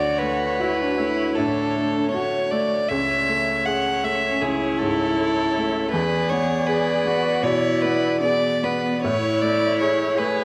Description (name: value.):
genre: neoclassical piano and strings.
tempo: 78 BPM.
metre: 4/4.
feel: rubato.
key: A major.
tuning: A4 = 440 Hz.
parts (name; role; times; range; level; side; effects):
rich violin; melody; 0.0-10.4 s; G#4 to F#5; -26 LUFS; equal; none.
dark cello; second line; 0.0-10.4 s; A3 to G#4; -28 LUFS; equal; none.
dark viola; accompaniment; 0.0-10.4 s; C#5 to D5; -31 LUFS; equal; none.
felt-muted upright piano; accompaniment; 0.0-10.4 s; C#2 to A4; -28 LUFS; equal; none.
room: wet scoring stage reverb, RT60 2.2 s.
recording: recorded in a church or concert hall.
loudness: -22 LUFS.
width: mono.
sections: 0.0-10.4 A section.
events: none.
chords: 0.0 Dmaj7; 2.9 Amaj7/C#; 5.9 E7; 9.0 Amaj7.